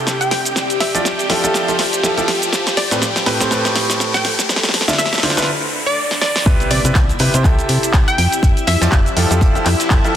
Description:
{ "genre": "piano house", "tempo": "122 BPM", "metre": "4/4", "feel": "swing 57% on 16ths", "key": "unclear", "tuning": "A4 = 440 Hz", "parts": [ { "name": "string machine, violins", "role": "sustained chords", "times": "0.0-10.2 s", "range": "E4 to G5", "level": "-24 LUFS", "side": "equal", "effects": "ensemble chorus, sidechain pumping" }, { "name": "clear grand piano", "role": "riff", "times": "0.0-10.2 s", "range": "A2 to E5", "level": "-20 LUFS", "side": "right 1 dB", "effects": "sidechain pumping, low-pass filter, tape echo" }, { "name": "riser and impact", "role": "sound effects", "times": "0.0-8.4 s", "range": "none", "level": "-24 LUFS", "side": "left 1 dB", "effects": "none" }, { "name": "granular cloud pad", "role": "texture", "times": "0.0-10.2 s", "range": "F3 to A5", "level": "-27 LUFS", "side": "left 1 dB", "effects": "built-in reverb, sidechain pumping" }, { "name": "solid FM bass", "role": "bass", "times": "0.1-10.0 s", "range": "D1 to C3", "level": "-19 LUFS", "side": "equal", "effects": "tube saturation, sidechain pumping, high-pass filter" }, { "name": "house drum kit", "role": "drums", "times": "0.1-10.1 s", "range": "cabasa, handclaps, hi-hat, snare drum", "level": "-19 LUFS", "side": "equal", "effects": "high-pass filter on snare, high-pass filter on perc, high-pass filter on hats" }, { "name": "glassy wavetable pluck", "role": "melody", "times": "0.2-9.2 s", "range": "D5 to G5", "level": "-22 LUFS", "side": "equal", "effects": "chorus, tape echo" }, { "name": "electronic kick drum", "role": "drums", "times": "6.5-10.0 s", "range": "none", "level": "-14 LUFS", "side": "equal", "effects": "none" }, { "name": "vintage brush drum kit", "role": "drums", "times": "6.5-10.0 s", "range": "hi-hat, snare drum", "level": "-28 LUFS", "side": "right 2 dB", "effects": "none" } ], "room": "moderate lush hall reverb, RT60 2.0 s, small room ambience", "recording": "dense, heavily limited modern master", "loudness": "-13 LUFS", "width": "side -10 dB against mid", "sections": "0.0-6.5 A section; 6.5-10.2 B section", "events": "build-up 0.0-6.5; drum fill 0.0-5.5, 6.1-6.5; riser 0.0-6.5; break 5.5-6.5; drop 6.5-10.2; impact 6.5-8.4", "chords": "0.3 Fmaj9; 2.5 Am9; 4.2 Dmadd9; 6.5 Cmaj7; 8.2 Fmaj9" }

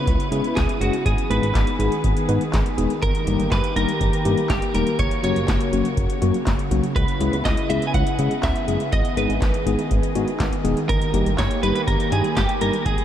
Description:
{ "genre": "synth-pop", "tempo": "122 BPM", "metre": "4/4", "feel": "straight", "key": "G# minor", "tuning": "A4 = 440 Hz", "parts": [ { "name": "semi-hollow electric guitar", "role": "melody", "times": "0.0-13.0 s", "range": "F#4 to G#5", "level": "-26 LUFS", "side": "right 2 dB", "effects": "ensemble chorus, ping-pong delay" }, { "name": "warm analog pad", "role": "sustained chords", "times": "0.0-13.0 s", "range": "C#3 to G#4", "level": "-26 LUFS", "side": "left 1 dB", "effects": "chorus" }, { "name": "chorused synth bass", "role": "bass", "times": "0.1-13.0 s", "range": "E1 to C#3", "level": "-23 LUFS", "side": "equal", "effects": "none" }, { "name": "electro analog drum machine", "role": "drums", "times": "0.1-13.0 s", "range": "handclaps, hi-hat, kick drum, snare drum", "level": "-24 LUFS", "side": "equal", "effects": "none" }, { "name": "tine electric piano", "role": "accompaniment", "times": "0.3-12.7 s", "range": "F#3 to B4", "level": "-26 LUFS", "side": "left 3 dB", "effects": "medium stereo tremolo" } ], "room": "moderate huge ambient reverb, RT60 8.4 s", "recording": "dreamy mix soaked in reverb", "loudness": "-18 LUFS", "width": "side -10 dB against mid", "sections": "0.0-13.0 A section", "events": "none", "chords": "0.0 C#m7; 1.1 G#m; 3.0 D#/G; 5.0 F#; 7.0 C#m7; 8.9 G#m; 10.9 D#/G" }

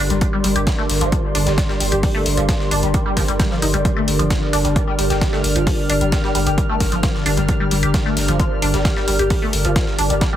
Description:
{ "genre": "driving peak-time techno", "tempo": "132 BPM", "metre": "4/4", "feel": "straight", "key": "G minor", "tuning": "A4 = 440 Hz", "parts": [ { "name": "saturated sub bass", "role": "bass", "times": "0.0-10.2 s", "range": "G1", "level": "-22 LUFS", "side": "equal", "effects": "overdrive, sidechain pumping, low-pass filter" }, { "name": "metallic inharmonic drone", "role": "drone", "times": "0.0-10.4 s", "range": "G2 to D3", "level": "-24 LUFS", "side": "left 2 dB", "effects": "chorus, built-in reverb, sidechain pumping" }, { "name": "warbly tape-like pad", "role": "texture", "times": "0.0-10.4 s", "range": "G4 to F6", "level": "-25 LUFS", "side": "equal", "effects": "chorus, built-in reverb, sidechain pumping" }, { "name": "resonant blip pluck", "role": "riff", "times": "0.1-10.4 s", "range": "F3 to G4", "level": "-22 LUFS", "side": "equal", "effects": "phaser, overdrive, lush chorus, sidechain pumping, dub echo" }, { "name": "electronic hi-hat", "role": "drums", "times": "0.1-10.3 s", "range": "none", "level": "-25 LUFS", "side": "left 2 dB", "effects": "none" }, { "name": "breakbeat sampler-style drum kit", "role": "drums", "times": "0.2-10.3 s", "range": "hi-hat, snare drum", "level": "-30 LUFS", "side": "equal", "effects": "high-pass filter on snare, sidechain pumping on hats, high-pass filter on hats, high-pass filter on room" }, { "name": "electronic kick drum", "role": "drums", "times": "0.2-10.3 s", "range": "none", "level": "-20 LUFS", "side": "equal", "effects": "none" } ], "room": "little or no reverb", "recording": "heavily compressed radio sound, multiband compression", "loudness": "-16 LUFS", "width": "side -11 dB against mid", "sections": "0.0-10.4 A section", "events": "none", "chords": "0.0 Gm" }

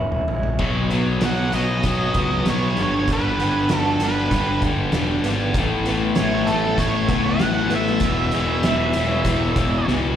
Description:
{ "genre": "quiet-loud alternative rock", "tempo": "97 BPM", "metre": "4/4", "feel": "straight", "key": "unclear", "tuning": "A4 = 438 Hz", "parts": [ { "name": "electric guitar through a small old amp", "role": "arpeggios", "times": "0.0-10.2 s", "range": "E2 to F#4", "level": "-28 LUFS", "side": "right 3 dB", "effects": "tremolo, slapback echo" }, { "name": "fuzz picked electric bass", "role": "bass", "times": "0.0-10.2 s", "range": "E1 to C#2", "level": "-25 LUFS", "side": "equal", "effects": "overdrive" }, { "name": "oversized low-tuned drum kit", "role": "drums", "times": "0.1-10.0 s", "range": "crash cymbal, hi-hat, kick drum, snare drum, toms", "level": "-25 LUFS", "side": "equal", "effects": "none" }, { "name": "distorted electric guitar", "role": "riff", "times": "0.6-10.2 s", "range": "E2 to B3", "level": "-22 LUFS", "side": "left 4 dB", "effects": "distortion, slapback echo" }, { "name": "octave-fuzz lead guitar", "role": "melody", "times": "1.2-9.9 s", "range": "A4 to F#5", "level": "-25 LUFS", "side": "right 4 dB", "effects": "distortion, slapback echo, digital delay" } ], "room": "studio reverb", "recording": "live gig heard through the venue's PA, club reverb", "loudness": "-18 LUFS", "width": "side -9 dB against mid", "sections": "0.6-10.2 A section", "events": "drum fill 0.0-0.6, 9.9", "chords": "0.0 E6; 0.6 Bsus2; 2.8 Gmaj7; 5.6 Aadd9; 8.0 E6" }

